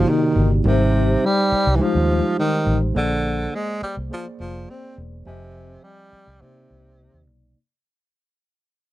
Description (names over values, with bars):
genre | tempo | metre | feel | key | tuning
lush 1970s-style soul | 104 BPM | 4/4 | straight | C minor | A4 = 441 Hz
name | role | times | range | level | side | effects
breathy tenor saxophone | melody | 0.0-7.3 s | C3 to C4 | -22 LUFS | right 1 dB | none
mellow tine electric piano | accompaniment | 0.0-7.6 s | C3 to Ab5 | -24 LUFS | left 1 dB | medium stereo tremolo
vintage muted fingered electric bass | bass | 0.0-7.5 s | E1 to C3 | -21 LUFS | equal | none
room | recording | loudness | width
little or no reverb | dry, close 1970s-style studio recording | -17 LUFS | side -16 dB against mid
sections
0.0-7.6 A section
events
fade-out 0.0-7.6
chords
0.0 Cm9; 0.6 Abmaj7; 3.0 Bb9; 5.3 Fm7; 6.4 Cm9